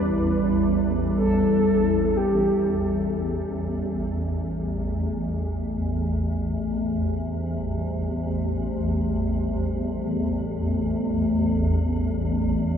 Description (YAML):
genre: dark ambient drone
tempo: free time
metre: none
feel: none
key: unclear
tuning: A4 = 440 Hz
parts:
  - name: mellow horn-like synth lead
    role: melody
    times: 0.0-2.9 s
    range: G4 to B4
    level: -27 LUFS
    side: right 3 dB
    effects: lush chorus, ping-pong delay
  - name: deep dark ambient pad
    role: sustained chords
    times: 0.0-12.8 s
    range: G3 to C5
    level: -26 LUFS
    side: left 2 dB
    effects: chorus, built-in reverb
  - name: swarming drone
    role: drone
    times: 0.0-12.8 s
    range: A1 to E2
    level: -25 LUFS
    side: equal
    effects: built-in reverb
room: wet huge ambient reverb, RT60 8.4 s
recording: in a vast, echoing space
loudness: -22 LUFS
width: side -8 dB against mid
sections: 0.0-3.2 A section; 3.2-12.8 B section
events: none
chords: 0.0 Em; 3.2 Am7